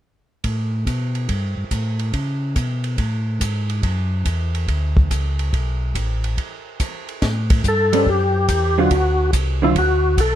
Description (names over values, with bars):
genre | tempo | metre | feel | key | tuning
soul jazz organ trio | 142 BPM | 4/4 | swing 68% on 8ths | A mixolydian | A4 = 441 Hz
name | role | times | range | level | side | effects
mellow tonewheel organ | bass | 0.4-10.4 s | A1 to C#3 | -21 LUFS | equal | slow rotary speaker
compact cocktail drum kit | drums | 0.4-10.3 s | hi-hat, kick drum, ride cymbal, snare drum | -23 LUFS | equal | none
percussive tonewheel organ | melody | 7.7-10.4 s | E4 to A4 | -18 LUFS | left 2 dB | overdrive, chorus vibrato, slow rotary speaker
vintage hollow-body jazz guitar | accompaniment | 7.9-9.8 s | D3 to F4 | -20 LUFS | right 4 dB | none
room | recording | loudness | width
little or no reverb | dark, warm production | -18 LUFS | side -11 dB against mid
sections
0.4-7.2 A section; 7.2-10.4 B section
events
break 6.4-7.2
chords
0.4 Asus2; 2.1 C#5; 3.8 F#5; 5.5 Asus2; 6.4 N.C.; 7.2 Am7; 8.9 D7